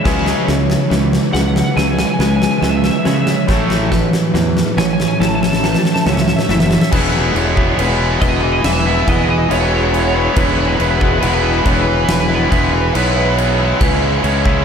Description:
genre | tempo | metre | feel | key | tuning
post-rock | 70 BPM | 4/4 | straight | E major | A4 = 441 Hz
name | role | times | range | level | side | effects
twelve-string electric guitar | melody | 0.0-13.3 s | B4 to A5 | -22 LUFS | right 1 dB | analog chorus, diffuse ambient delay
evolving wavetable pad | sustained chords | 0.0-14.6 s | E3 to G#5 | -28 LUFS | left 1 dB | none
twelve-string electric guitar | arpeggios | 0.0-6.9 s | A2 to E4 | -27 LUFS | left 1 dB | none
vibraphone with hard mallets | arpeggios | 0.0-14.6 s | B4 to C#5 | -25 LUFS | right 2 dB | diffuse ambient delay
distorted electric guitar | riff | 0.0-14.6 s | A2 to E4 | -20 LUFS | left 8 dB | overdrive
tight distorted guitar | riff | 0.1-14.6 s | A2 to E4 | -20 LUFS | right 8 dB | distortion
fuzz fingered electric bass | bass | 0.1-14.6 s | E1 to C#3 | -18 LUFS | equal | overdrive
huge arena drum kit | drums | 0.1-14.6 s | crash cymbal, kick drum, snare drum | -18 LUFS | equal | none
room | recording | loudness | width
moderate lush hall reverb, RT60 2.1 s | dreamy mix soaked in reverb | -12 LUFS | side -7 dB against mid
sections
0.0-6.9 A section; 6.9-14.6 B section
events
build-up 0.0-6.9; drum fill 0.0-6.9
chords
0.1 C#m; 3.5 A; 6.9 E; 13.8 C#m

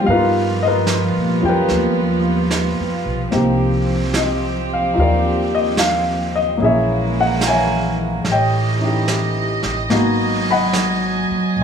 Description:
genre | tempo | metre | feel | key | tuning
jazz ballad | 73 BPM | 4/4 | swing 69% on 8ths | unclear | A4 = 440 Hz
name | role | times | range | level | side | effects
warm grand piano | accompaniment | 0.0-11.6 s | G3 to Cb6 | -19 LUFS | left 2 dB | none
warm chamber string section | sustained chords | 0.0-11.6 s | Fb3 to Ab5 | -20 LUFS | right 2 dB | none
vintage brush drum kit | drums | 0.0-11.6 s | brushed snare drum, hi-hat, snare drum | -25 LUFS | right 3 dB | none
upright bass | bass | 0.1-11.6 s | Ab1 to A#2 | -22 LUFS | equal | none
room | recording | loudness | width
moderate club reverb, RT60 0.5 s | studio reverb | -15 LUFS | side -7 dB against mid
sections
0.0-11.6 A section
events
none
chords
0.1 G7alt; 3.3 Cm9; 6.6 Bbm7b5; 8.3 A7#11; 9.9 Abm9

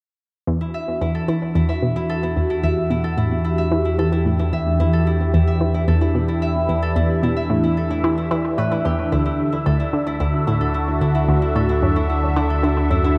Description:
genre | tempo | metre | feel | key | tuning
ambient, sequencer-driven space music | 111 BPM | 4/4 | straight | E minor | A4 = 440 Hz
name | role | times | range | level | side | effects
phased analog pad | sustained chords | 0.5-13.2 s | D3 to E5 | -24 LUFS | equal | phaser, chorus, shimmer reverb
analog pluck | riff | 0.5-13.1 s | D2 to E3 | -24 LUFS | equal | chorus, tape echo
round analog bass | bass | 0.5-13.2 s | D2 to E2 | -26 LUFS | equal | none
concert harp | arpeggios | 0.6-13.2 s | E4 to E5 | -30 LUFS | equal | tape echo, shimmer reverb
room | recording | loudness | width
wet spring reverb, RT60 2.7 s | echo-heavy mix | -20 LUFS | mono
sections
0.5-13.2 A section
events
none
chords
0.5 Em7; 9.1 Dadd9

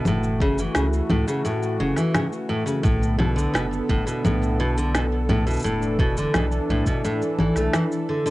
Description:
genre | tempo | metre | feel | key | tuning
folktronica | 86 BPM | 4/4 | straight | B minor | A4 = 440 Hz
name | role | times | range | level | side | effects
warm analog pad | sustained chords | 0.0-8.3 s | D3 to A4 | -27 LUFS | equal | chorus, cassette tape, plate reverb
picked steel-string acoustic guitar | arpeggios | 0.0-8.3 s | A2 to A3 | -24 LUFS | equal | cassette tape, tape echo, plate reverb
warm sub bass | bass | 0.1-7.7 s | E1 to C#2 | -26 LUFS | equal | none
electronic congas, cabasa and snare drum | drums | 0.1-8.3 s | none | -25 LUFS | left 1 dB | cassette tape
electronic kick drum | drums | 0.4-7.0 s | none | -23 LUFS | equal | cassette tape
room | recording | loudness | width
light reverb | home recording on cassette, nothing above 10.7 kHz | -20 LUFS | side -18 dB against mid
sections
0.0-8.3 A section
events
none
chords
0.1 F#m7; 2.9 Bm7; 5.6 E7sus4

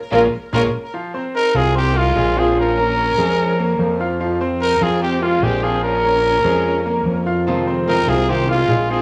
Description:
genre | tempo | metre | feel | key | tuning
latin | 147 BPM | 4/4 | straight | F minor | A4 = 440 Hz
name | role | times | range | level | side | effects
growling trumpet | melody | 0.1-9.0 s | F4 to Bb4 | -21 LUFS | equal | cassette tape, tape echo
rich studio violin section | second line | 0.1-9.0 s | Ab3 to F4 | -28 LUFS | equal | none
nylon-string guitar | accompaniment | 0.1-0.7, 7.5-9.0 s | C3 to F4 | -24 LUFS | equal | none
bright grand piano | arpeggios | 0.1-9.0 s | F3 to F6 | -24 LUFS | equal | none
fat analog bass | bass | 0.1-9.0 s | Bb1 to F2 | -23 LUFS | equal | none
room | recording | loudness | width
moderate booth ambience, RT60 0.2 s | home recording on cassette, studio reverb | -18 LUFS | mono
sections
0.9-9.0 A section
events
band accent 0.0-0.9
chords
0.0 Bbm7; 0.9 Fm; 2.6 Bbm7; 4.2 Fm; 5.8 Bbm7; 7.5 Fm7

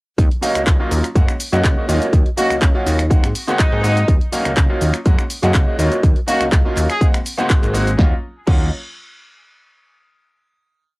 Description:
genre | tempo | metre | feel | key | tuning
filtered disco house | 123 BPM | 4/4 | straight | Eb dorian | A4 = 442 Hz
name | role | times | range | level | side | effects
plucky analog bass | bass | 0.2-8.7 s | Ab1 to Ab2 | -19 LUFS | equal | tube saturation, sidechain pumping
electronic kick drum | drums | 0.2-8.6 s | none | -15 LUFS | equal | small room reverb, cassette tape
punchy analog drum machine | drums | 0.2-8.6 s | crash cymbal, finger snaps, handclaps, hi-hat, shaker, snare drum | -24 LUFS | equal | overdrive, sidechain pumping on hats, small room reverb, cassette tape, sidechain pumping on perc, sidechain pumping on cymbals
bright grand piano | accompaniment | 0.4-8.7 s | Gb3 to F5 | -22 LUFS | equal | phaser, vintage 12-bit sampler grit, sidechain pumping
mellow electric guitar | riff | 0.4-8.7 s | Gb4 to Ab5 | -23 LUFS | right 1 dB | lush chorus, sidechain pumping
bright horn section | melody | 2.4-7.1 s | Eb4 to Ab4 | -23 LUFS | equal | vintage 12-bit sampler grit, sidechain pumping, cassette tape, analog delay
room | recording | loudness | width
light reverb | home recording on cassette | -14 LUFS | side -22 dB against mid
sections
0.2-8.0 drop; 8.0-9.9 final chord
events
drop 0.2-8.0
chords
0.2 Ebm7; 1.2 Gb69; 1.9 Ebm7; 3.1 Ab9; 4.1 Ebm7; 5.1 Gb69; 5.8 Ebm7; 7.0 Ab9; 8.0 Ebm7

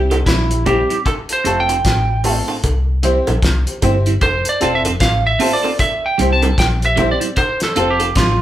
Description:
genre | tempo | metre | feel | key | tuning
roots reggae | 76 BPM | 4/4 | swing 60% on 16ths | C mixolydian | A4 = 440 Hz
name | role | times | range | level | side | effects
clear upright piano | stabs | 0.0-8.0 s | G3 to C5 | -21 LUFS | left 1 dB | none
vintage muted fingered electric bass | bass | 0.0-8.4 s | E1 to C2 | -18 LUFS | equal | none
clean electric guitar | accompaniment | 0.1-8.1 s | G3 to A4 | -23 LUFS | right 4 dB | phaser
cloth-damped thuddy drum kit | drums | 0.1-8.4 s | hi-hat, kick drum, snare drum | -20 LUFS | left 1 dB | none
bongos | percussion | 0.1-8.2 s | none | -27 LUFS | right 1 dB | slapback echo
lightly driven lead guitar | melody | 0.3-8.4 s | E4 to A5 | -18 LUFS | right 2 dB | none
room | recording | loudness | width
wet large studio reverb, RT60 0.9 s | band playing live in one room | -13 LUFS | side -12 dB against mid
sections
0.0-8.4 A section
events
lead electric guitar solo 0.0-8.4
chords
0.0 C; 1.1 F; 2.6 C; 4.2 F; 5.8 C; 7.4 F

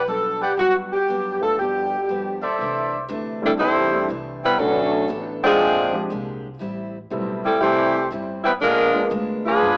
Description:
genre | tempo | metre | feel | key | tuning
jazz, big band swing | 119 BPM | 4/4 | swing 68% on 8ths | C major | A4 = 441 Hz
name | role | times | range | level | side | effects
warm saxophone section | melody | 0.0-9.8 s | F3 to C5 | -19 LUFS | equal | none
upright bass | bass | 0.0-9.8 s | F#1 to G2 | -35 LUFS | equal | none
picked steel-string acoustic guitar | accompaniment | 0.1-9.8 s | G2 to C#5 | -31 LUFS | equal | cassette tape
clear trumpet section | stabs | 0.4-3.1 s | G4 to F#5 | -25 LUFS | equal | cassette tape
warm baby grand piano | accompaniment | 1.4-9.1 s | D3 to C#5 | -29 LUFS | equal | cassette tape
mellow trombone section | second line | 1.6-9.8 s | A2 to Ab4 | -26 LUFS | equal | cassette tape
room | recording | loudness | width
wet spring reverb, RT60 1.8 s, studio reverb | home recording on cassette, small speaker sound | -18 LUFS | side -33 dB against mid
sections
0.0-2.6 A section; 2.6-9.8 B section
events
none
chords
0.0 Gmaj7; 1.6 G7; 2.6 C69; 4.6 Bm9; 5.6 Bb13; 6.6 Am7; 8.6 Bb7b9

